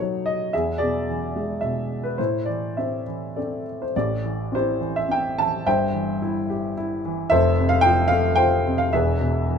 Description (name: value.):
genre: classical, lyrical solo piano.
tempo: 97-117 BPM.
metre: 3/4.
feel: rubato.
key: A minor.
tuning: A4 = 441 Hz.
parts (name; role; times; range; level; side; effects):
dark baby grand piano; solo; 0.0-9.6 s; E1 to A5; -20 LUFS; equal; none.
room: moderate studio reverb, RT60 0.6 s.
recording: minimal, uncompressed stereo recording.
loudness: -20 LUFS.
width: side -6 dB against mid.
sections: 0.0-3.9 A section; 3.9-9.6 A section.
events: none.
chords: 0.0 B7; 0.5 E; 2.2 Am; 3.9 Am7; 5.7 C/G; 7.3 F; 8.9 E.